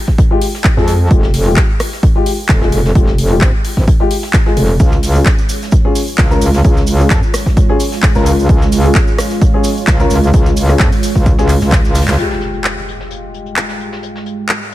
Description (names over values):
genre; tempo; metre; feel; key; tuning
bass house; 130 BPM; 4/4; swing 54% on 16ths; F minor; A4 = 441 Hz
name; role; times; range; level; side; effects
electronic kick drum; drums; 0.1-11.8 s; none; -12 LUFS; equal; none
soft brush drum kit; drums; 0.1-14.7 s; hi-hat, snare drum; -30 LUFS; left 2 dB; sidechain pumping on hats, high-pass filter on hats, low-pass filter on hats, high-pass filter on snare, low-pass filter on snare, high-pass filter on room, low-pass filter on room
dark grand piano; stabs; 0.3-14.7 s; Ab3 to Bb4; -19 LUFS; left 3 dB; sidechain pumping, low-pass filter, ping-pong delay
house drum kit; drums; 0.4-14.6 s; handclaps, hi-hat, rim click; -20 LUFS; equal; none
metallic wobble bass; bass; 0.8-12.2 s; F1 to F2; -13 LUFS; equal; chorus, tube saturation, sidechain pumping
dark analog pad; sustained chords; 5.5-14.7 s; Ab3 to F5; -21 LUFS; right 4 dB; chorus, sidechain pumping
cabasa; percussion; 4.8-12.2 s; none; -29 LUFS; right 6 dB; none
impact; sound effects; 12.2-14.0 s; none; -28 LUFS; equal; none
room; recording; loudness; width
small room ambience; none; -10 LUFS; side -15 dB against mid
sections
0.0-12.2 A section; 12.2-14.7 B section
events
drum fill 11.7-12.2; band accent 12.1; impact 12.2-14.0; filter sweep on grand piano 12.2-14.7; filter sweep on analog synth pad 12.2-14.7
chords
0.0 Fmadd9; 4.8 Db; 12.2 Fmadd9